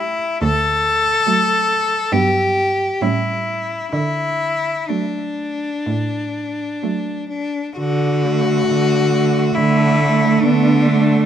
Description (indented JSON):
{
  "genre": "classical, lyrical piece for cello ensemble",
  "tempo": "62-72 BPM",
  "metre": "4/4",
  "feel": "rubato",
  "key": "D major",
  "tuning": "A4 = 440 Hz",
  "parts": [
    { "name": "clear cello", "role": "melody", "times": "0.0-11.3 s", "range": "D4 to A4", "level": "-18 LUFS", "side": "left 3 dB", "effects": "none" },
    { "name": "rich cello", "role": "second line", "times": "0.0-11.3 s", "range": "A3 to C#4", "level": "-23 LUFS", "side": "right 7 dB", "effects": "none" },
    { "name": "rich cello", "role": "accompaniment", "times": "0.0-11.3 s", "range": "F#3 to B3", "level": "-21 LUFS", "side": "right 2 dB", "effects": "none" },
    { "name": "rich cello", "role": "bass", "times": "0.4-11.2 s", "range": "D2 to D3", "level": "-20 LUFS", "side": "right 2 dB", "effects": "none" }
  ],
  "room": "moderate recital hall reverb, RT60 1.7 s",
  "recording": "none",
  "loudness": "-15 LUFS",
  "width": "side -9 dB against mid",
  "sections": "0.0-7.8 A section; 7.8-11.3 A section",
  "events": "none",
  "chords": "0.4 D; 2.1 Gmaj7; 3.0 A7; 3.9 D",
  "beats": "| 0.42 1.28 2.13 3.02 | 3.93 4.90 5.87 6.83 | 7.78 8.68 9.55 10.43"
}